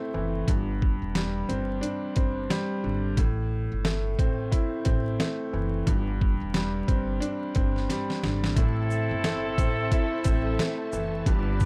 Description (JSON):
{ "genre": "hip hop, boom-bap hip-hop", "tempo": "89 BPM", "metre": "4/4", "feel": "swing 60% on 16ths", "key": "A minor", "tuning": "A4 = 440 Hz", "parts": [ { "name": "warm upright piano", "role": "accompaniment", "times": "0.0-11.7 s", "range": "G2 to E4", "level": "-32 LUFS", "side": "equal", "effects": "high-pass filter, low-pass filter" }, { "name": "upright bass", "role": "bass", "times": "0.1-11.7 s", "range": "E1 to A1", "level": "-33 LUFS", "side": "equal", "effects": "none" }, { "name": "boom bap sampler-style drum kit", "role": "drums", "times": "0.5-11.7 s", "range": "hi-hat, kick drum, shaker, snare drum", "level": "-28 LUFS", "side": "equal", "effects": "none" }, { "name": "warm studio string section", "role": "sustained chords", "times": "8.6-11.7 s", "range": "C4 to A5", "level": "-42 LUFS", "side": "equal", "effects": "high-pass filter, low-pass filter" }, { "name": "warm horn section", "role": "stabs", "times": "8.6-11.7 s", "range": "C4 to B4", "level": "-34 LUFS", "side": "equal", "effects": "high-pass filter, low-pass filter, analog delay" } ], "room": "studio ambience", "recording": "dry, gritty hardware recording, vinyl crackle", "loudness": "-27 LUFS", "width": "mono", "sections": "0.0-8.6 A section; 8.6-11.7 B section", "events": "drum fill 7.9-8.6", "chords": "0.5 Gsus4; 3.2 Am; 5.9 Gsus4; 8.6 Am" }